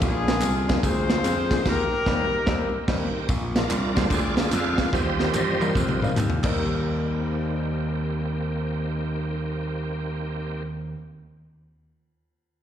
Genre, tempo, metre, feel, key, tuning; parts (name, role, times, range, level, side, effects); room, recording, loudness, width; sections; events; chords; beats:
uptempo gospel; 146 BPM; 4/4; swing 66% on 8ths; Eb major; A4 = 439 Hz
warm horn section; melody; 0.0-2.9 s; D4 to C5; -25 LUFS; left 4 dB; slapback echo
clear upright piano; accompaniment; 0.0-11.0 s; Eb2 to C5; -33 LUFS; left 3 dB; slapback echo
bright tonewheel organ; sustained chords; 0.0-10.6 s; D3 to F5; -30 LUFS; right 3 dB; slow rotary speaker, chorus vibrato
gritty slap bass; bass; 0.0-10.9 s; Bb1 to G2; -26 LUFS; equal; overdrive
modern studio drum kit; drums; 0.0-6.5 s; crash cymbal, kick drum, ride cymbal, snare drum, toms; -26 LUFS; equal
tambourine and handclaps; percussion; 0.0-6.8 s; -38 LUFS; right 4 dB; slapback echo
little or no reverb; live gig heard through the venue's PA, recital hall reverb; -22 LUFS; side -10 dB against mid
0.0-3.3 A section; 3.3-6.6 B section; 6.6-9.9 C section
band accent 1.7-3.3; tonewheel organ solo 3.3-6.6; drum fill 4.9-6.6
0.0 Bb7; 1.7 Eb6; 3.3 Bb7; 4.9 Eb6
| 0.02 0.42 0.83 1.24 | 1.65 2.06 2.47 2.88 | 3.29 3.70 4.11 4.52 | 4.93 5.34 5.75 6.17 | 6.58 6.99 7.40 7.81 | 8.22 8.63 9.04 9.45